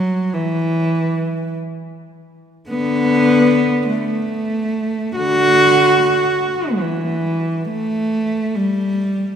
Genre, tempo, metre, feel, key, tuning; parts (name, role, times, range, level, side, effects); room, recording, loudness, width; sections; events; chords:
classical, free, expressive piece for unaccompanied cello; 62-81 BPM; 3/4; rubato; D major; A4 = 440 Hz
warm cello; solo; 0.0-9.4 s; D3 to F#4; -15 LUFS; equal
wet church reverb, RT60 3.0 s; heard from further back in the room; -15 LUFS; side -8 dB against mid
0.0-9.4 A section